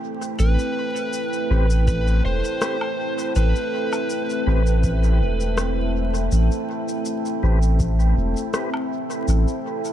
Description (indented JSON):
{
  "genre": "ambient dub",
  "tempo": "81 BPM",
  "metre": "4/4",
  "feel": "swing 54% on 16ths",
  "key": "A minor",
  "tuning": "A4 = 441 Hz",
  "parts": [
    { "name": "deep dark ambient pad", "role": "sustained chords", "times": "0.0-9.9 s", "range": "A3 to G5", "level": "-26 LUFS", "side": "right 1 dB", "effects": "chorus, built-in reverb" },
    { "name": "electronic shaker, rim click and woodblock", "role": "drums", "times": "0.2-9.9 s", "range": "none", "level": "-32 LUFS", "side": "left 2 dB", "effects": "studio ambience, dub echo" },
    { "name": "overdriven slide guitar", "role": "melody", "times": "0.4-5.9 s", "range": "B4 to C5", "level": "-28 LUFS", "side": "equal", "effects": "dub echo" },
    { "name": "soft dub sub bass", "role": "bass", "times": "0.4-9.5 s", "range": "E1 to A1", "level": "-18 LUFS", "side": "equal", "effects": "none" },
    { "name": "tonewheel organ", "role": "stabs", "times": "1.5-8.7 s", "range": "C4 to B4", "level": "-35 LUFS", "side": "left 3 dB", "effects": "fast rotary speaker, dub echo" },
    { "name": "electronic kick drum", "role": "drums", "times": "1.9-8.0 s", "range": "none", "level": "-26 LUFS", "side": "equal", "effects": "none" }
  ],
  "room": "light reverb",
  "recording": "vinyl crackle",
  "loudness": "-19 LUFS",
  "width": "side -11 dB against mid",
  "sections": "0.0-9.9 A section",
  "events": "none",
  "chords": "0.0 Am9",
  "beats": "| 0.39 1.13 1.87 2.61 | 3.35 4.09 4.84 5.58 | 6.32 7.06 7.80 8.54 | 9.28"
}